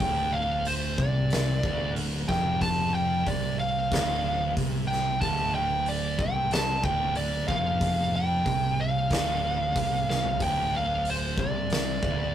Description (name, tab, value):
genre	stoner and doom metal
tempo	92 BPM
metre	4/4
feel	straight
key	D minor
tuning	A4 = 439 Hz
part	fuzz lead guitar	melody	0.0-12.3 s	C5 to A5	-28 LUFS	equal	distortion
part	thick fuzz guitar	riff	0.0-12.3 s	D2 to C3	-35 LUFS	left 6 dB	distortion
part	thick fuzz guitar	riff	0.0-12.3 s	D2 to C3	-32 LUFS	right 6 dB	distortion
part	growling fingered electric bass	bass	0.0-12.3 s	D1 to C2	-33 LUFS	equal	overdrive
part	oversized low-tuned drum kit	drums	0.0-12.2 s	hi-hat, kick drum, snare drum, toms	-31 LUFS	equal	none
room	light reverb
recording	rough rehearsal-room recording, tube saturation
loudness	-24 LUFS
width	side -10 dB against mid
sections	0.0-12.3 A section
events	drum fill 10.1-10.4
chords	0.0 Dm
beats	| 0.01 0.66 1.32 1.97 | 2.62 3.27 3.92 4.57 | 5.22 5.87 6.52 7.17 | 7.82 8.46 9.11 9.76 | 10.41 11.06 11.71